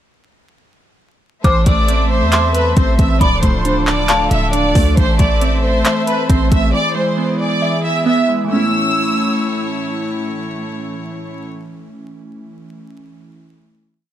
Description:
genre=hip hop, trap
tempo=136 BPM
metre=4/4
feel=half-time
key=A harmonic minor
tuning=A4 = 440 Hz
part: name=warm studio violin section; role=melody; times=1.4-9.8 s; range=B4 to E6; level=-19 LUFS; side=equal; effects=ping-pong delay
part: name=dark detuned synth bell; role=second line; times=1.4-4.5 s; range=A5 to D6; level=-21 LUFS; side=left 2 dB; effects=chorus, phaser, ping-pong delay
part: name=glassy digital keys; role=accompaniment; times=1.4-14.1 s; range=E3 to F5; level=-20 LUFS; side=right 2 dB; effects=chorus
part: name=clear chamber string section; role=sustained chords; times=1.4-11.5 s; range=A2 to E5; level=-24 LUFS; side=left 2 dB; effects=none
part: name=hard-hitting 808-style bass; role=bass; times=1.4-6.7 s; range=D1 to E2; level=-16 LUFS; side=equal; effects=none
part: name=pop drum kit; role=drums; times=1.4-6.6 s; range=handclaps, hi-hat, kick drum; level=-16 LUFS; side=equal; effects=overdrive
room=light reverb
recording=vinyl crackle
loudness=-13 LUFS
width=side -11 dB against mid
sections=1.4-8.5 hook; 8.5-12.0 final chord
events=none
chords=1.4 Am; 3.2 Dm; 5.0 Am; 6.7 E; 8.5 A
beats=| 1.44 1.88 2.33 2.77 | 3.21 3.65 4.09 4.53 | 4.97 5.41 5.86 6.30 | 6.74 7.18 7.62 8.06 | 8.50 8.94 9.38 9.83 | 10.27 10.71 11.15 11.59

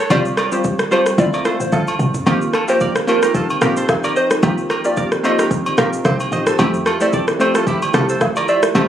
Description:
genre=afrobeats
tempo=111 BPM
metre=4/4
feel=swing 55% on 16ths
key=unclear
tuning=A4 = 440 Hz
part: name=direct-recorded clean electric guitar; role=riff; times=0.0-8.9 s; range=Eb4 to E5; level=-23 LUFS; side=right 4 dB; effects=vibrato effect, ping-pong delay
part: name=soft struck synth lead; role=melody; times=0.1-8.6 s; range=Bb4 to Eb5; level=-21 LUFS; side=equal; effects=chorus, ping-pong delay
part: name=analog pluck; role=accompaniment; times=0.1-8.9 s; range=G3 to G4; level=-20 LUFS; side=equal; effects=chorus
part: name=woody log drum bass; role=bass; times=0.1-8.9 s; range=A1 to F2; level=-21 LUFS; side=equal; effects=none
part: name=deep house drum kit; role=drums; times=0.1-8.9 s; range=kick drum, rim click, shaker, toms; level=-20 LUFS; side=equal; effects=overdrive, vintage 12-bit sampler grit
part: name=agogo bells and woodblock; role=percussion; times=0.1-8.9 s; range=none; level=-24 LUFS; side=right 2 dB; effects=none
part: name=warm analog pad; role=sustained chords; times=2.3-8.9 s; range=F3 to G4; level=-25 LUFS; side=left 1 dB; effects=chorus
room=light reverb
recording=recorded on a phone in the room, club reverb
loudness=-14 LUFS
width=side -10 dB against mid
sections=0.0-2.3 A section; 2.3-8.9 B section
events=drum fill 1.7-2.3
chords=0.1 Csus4; 1.2 Dm7; 2.3 Eb69; 6.6 Fmaj9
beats=| 0.10 0.64 1.18 1.73 | 2.27 2.81 3.35 3.89 | 4.43 4.97 5.51 6.05 | 6.59 7.13 7.67 8.21 | 8.75

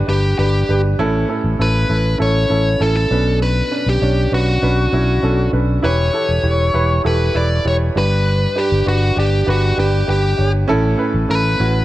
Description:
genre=piano-driven pop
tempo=99 BPM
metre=4/4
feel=straight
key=A mixolydian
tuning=A4 = 440 Hz
part: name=clear concert grand piano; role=accompaniment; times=0.0-11.8 s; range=G2 to D5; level=-20 LUFS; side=right 2 dB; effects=none
part: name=fingered electric bass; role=bass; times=0.0-11.8 s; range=E1 to B1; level=-17 LUFS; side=equal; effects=none
part: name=biting lead guitar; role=melody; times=0.1-11.8 s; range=F#4 to D5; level=-19 LUFS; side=left 1 dB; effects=overdrive
room=light reverb, small room ambience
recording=dark, warm production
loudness=-14 LUFS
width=side -15 dB against mid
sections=0.0-11.8 A section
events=none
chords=0.0 G; 1.0 A; 3.1 Bmadd9; 5.8 Em; 8.0 G; 10.7 A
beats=0.38 | 0.99 1.59 2.20 2.81 | 3.41 4.02 4.63 5.23 | 5.84 6.44 7.05 7.66 | 8.26 8.87 9.47 10.08 | 10.69 11.29

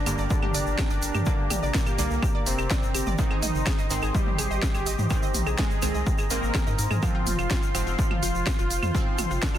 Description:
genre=melodic techno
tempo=125 BPM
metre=4/4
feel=straight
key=unclear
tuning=A4 = 440 Hz
part: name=soft supersaw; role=melody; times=0.0-9.6 s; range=Bb3 to Bb4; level=-32 LUFS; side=right 1 dB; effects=sidechain pumping, dub echo
part: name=glassy wavetable pluck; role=second line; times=0.0-9.6 s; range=Bb2 to Bb3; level=-37 LUFS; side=right 1 dB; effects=chorus, sidechain pumping, digital delay
part: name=lush unison pad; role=sustained chords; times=0.0-9.6 s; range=G4 to C6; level=-36 LUFS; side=left 1 dB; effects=chorus, sidechain pumping
part: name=synth brass stab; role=stabs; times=0.0-9.6 s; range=G2 to C4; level=-34 LUFS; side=right 2 dB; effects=chorus, phaser, sidechain pumping, digital delay
part: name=analog pluck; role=arpeggios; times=0.1-9.6 s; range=F4 to Eb5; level=-36 LUFS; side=left 1 dB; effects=chorus, vintage 12-bit sampler grit, sidechain pumping, digital delay
part: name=round analog bass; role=bass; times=0.1-9.4 s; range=F1 to Ab2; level=-29 LUFS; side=equal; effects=sidechain pumping
part: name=techno drum kit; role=drums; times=0.1-9.6 s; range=claves, hi-hat, snare drum, toms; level=-30 LUFS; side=right 1 dB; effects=none
part: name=egg shaker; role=percussion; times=0.1-9.6 s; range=none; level=-38 LUFS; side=left 3 dB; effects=none
part: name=electronic kick drum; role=drums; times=0.3-9.5 s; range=none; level=-26 LUFS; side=equal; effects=none
room=light reverb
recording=dense, heavily limited modern master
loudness=-22 LUFS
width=side -11 dB against mid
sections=0.0-9.6 A section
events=none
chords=0.0 Gm; 3.2 Ab; 7.0 Fm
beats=0.31 0.79 | 1.27 1.75 2.23 2.71 | 3.19 3.67 4.15 4.63 | 5.11 5.59 6.07 6.55 | 7.03 7.51 7.99 8.47 | 8.95 9.43

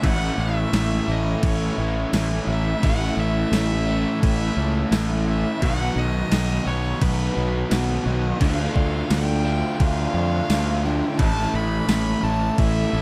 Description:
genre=rock, shoegaze and dream pop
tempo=86 BPM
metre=4/4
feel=straight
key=unclear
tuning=A4 = 440 Hz
part: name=bright violin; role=melody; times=0.0-13.0 s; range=B4 to B5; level=-33 LUFS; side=equal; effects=none
part: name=overdriven electric guitar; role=riff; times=0.0-13.0 s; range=A2 to F#4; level=-30 LUFS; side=equal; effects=lush chorus
part: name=overdriven electric guitar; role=riff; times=0.0-13.0 s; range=A2 to D4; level=-33 LUFS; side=equal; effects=phaser
part: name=overdriven semi-hollow guitar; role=riff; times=0.0-13.0 s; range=A2 to F#4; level=-31 LUFS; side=equal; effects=reverse reverb
part: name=fuzz fingered electric bass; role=bass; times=0.0-13.0 s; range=A1 to F2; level=-26 LUFS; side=equal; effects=overdrive
part: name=crisp 8-bit digital drum machine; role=drums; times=0.0-12.7 s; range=crash cymbal, kick drum, snare drum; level=-28 LUFS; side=equal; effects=overdrive
part: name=tambourine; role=percussion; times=0.7-12.1 s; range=none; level=-40 LUFS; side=equal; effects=none
room=little or no reverb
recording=dark, warm production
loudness=-22 LUFS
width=mono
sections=0.0-13.0 A section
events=none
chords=0.0 A; 5.6 B; 8.4 Dm; 11.2 A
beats=| 0.03 0.73 1.44 2.13 | 2.83 3.53 4.23 4.93 | 5.63 6.33 7.02 7.72 | 8.41 9.11 9.81 10.50 | 11.20 11.89 12.59

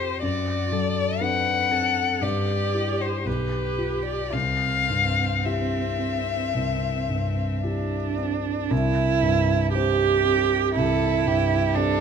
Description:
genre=classical, slow romantic movement for piano trio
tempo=53-61 BPM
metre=4/4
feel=rubato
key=C major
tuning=A4 = 442 Hz
part: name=warm violin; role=melody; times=0.0-12.0 s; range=G4 to F#5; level=-26 LUFS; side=left 8 dB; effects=none
part: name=rich cello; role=second line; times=0.0-12.0 s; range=C4 to B4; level=-26 LUFS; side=right 8 dB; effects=none
part: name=dark concert grand piano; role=accompaniment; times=0.0-12.0 s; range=B1 to C5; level=-25 LUFS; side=left 1 dB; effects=none
room=wet recital hall reverb, RT60 1.6 s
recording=close, detailed microphones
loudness=-21 LUFS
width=side -6 dB against mid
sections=0.0-8.7 A section; 8.7-12.0 A section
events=none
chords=0.2 D7/F#; 2.2 Cadd9/G; 3.3 G7/B; 4.3 C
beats=| 0.23 1.22 2.23 3.26 | 4.34 5.46 6.55 7.64 | 8.71 9.74 10.77 11.77

